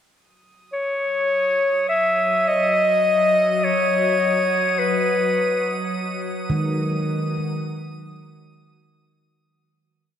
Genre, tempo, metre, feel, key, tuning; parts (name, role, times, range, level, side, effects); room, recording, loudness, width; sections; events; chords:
ambient; 52 BPM; 4/4; straight; A4 = 440 Hz
organ-like drone; drone; 1.9-9.5 s; F#3 to F#4; -29 LUFS; left 2 dB; ensemble chorus, built-in reverb
drifting glass-harmonics texture; texture; 0.9-9.4 s; D#6; -32 LUFS; right 2 dB; chorus, built-in reverb
clear clarinet; melody; 0.7-5.9 s; B4 to E5; -18 LUFS; left 1 dB; diffuse ambient delay
handpan; arpeggios; 6.5-10.1 s; D#3 to D#4; -24 LUFS; right 1 dB
wet huge ambient reverb, RT60 7.6 s; -18 LUFS; side -9 dB against mid
0.1-9.4 A section
fade-in on handpan 0.1-9.4; fade-in on synth drone 0.1-9.4; fade-in on synth texture 0.1-9.4; fade-out 4.8-9.4
0.1 D#m7/F#; 4.8 D#madd11